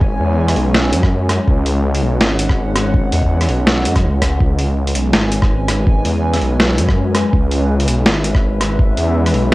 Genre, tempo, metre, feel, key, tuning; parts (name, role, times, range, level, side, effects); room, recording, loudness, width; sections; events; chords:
half-time drum and bass; 164 BPM; 4/4; swing 57% on 16ths, half-time; C# minor; A4 = 439 Hz
dark analog pad; sustained chords; 0.0-9.5 s; G#3 to G#5; -21 LUFS; left 1 dB; chorus, phaser, sidechain pumping, cassette tape
dark detuned saw bass; bass; 0.0-9.5 s; G#1 to F#2; -16 LUFS; equal
electronic kick drum; drums; 0.0-8.9 s; -15 LUFS; equal; cassette tape
boom bap sampler-style drum kit; drums; 0.5-9.5 s; hi-hat, rim click, snare drum; -18 LUFS; equal; cassette tape
moderate booth ambience, RT60 0.2 s; home recording on cassette; -13 LUFS; side -19 dB against mid
0.0-9.5 A section
0.0 C#5